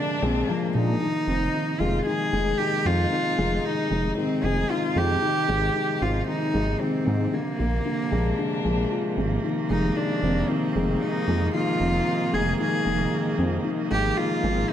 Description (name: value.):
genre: piano and strings electronica.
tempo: 114 BPM.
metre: 4/4.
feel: straight.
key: F dorian.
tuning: A4 = 440 Hz.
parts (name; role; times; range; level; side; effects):
warm cello; melody; 0.0-14.7 s; Bb3 to Ab4; -27 LUFS; right 1 dB; none.
warm string quartet; sustained chords; 0.0-14.7 s; C3 to Eb4; -30 LUFS; right 1 dB; none.
felt-muted upright piano; riff; 0.0-14.7 s; D3 to F4; -27 LUFS; left 3 dB; none.
dark detuned saw bass; bass; 0.2-14.6 s; F1 to Bb2; -26 LUFS; right 1 dB; none.
room: light reverb, small room ambience.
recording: none.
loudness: -22 LUFS.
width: side -10 dB against mid.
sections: 0.0-14.7 A section.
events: none.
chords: 0.0 Bb7; 1.0 Fm7; 5.2 Abmaj7; 7.3 Bb7; 9.4 Fm7; 13.6 Abmaj7.